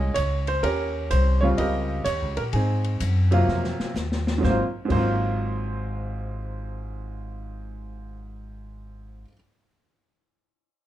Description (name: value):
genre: jazz piano trio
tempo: 127 BPM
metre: 4/4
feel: swing 66% on 8ths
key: Ab mixolydian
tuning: A4 = 440 Hz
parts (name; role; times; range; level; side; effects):
- clear baby grand piano; melody; 0.0-9.3 s; Ab2 to Eb5; -26 LUFS; right 2 dB; plate reverb
- upright bass; bass; 0.0-9.2 s; Ab1 to Ab2; -26 LUFS; equal; none
- open jazz drum kit; drums; 0.2-5.1 s; crash cymbal, hi-hat, kick drum, ride cymbal, snare drum; -32 LUFS; left 3 dB; none
room: light reverb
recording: dark, warm production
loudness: -22 LUFS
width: side -13 dB against mid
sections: 0.0-4.4 A section; 4.4-8.2 B section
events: drum fill 3.5-4.4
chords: 0.0 Bbm7; 0.6 Eb13; 2.5 Ab13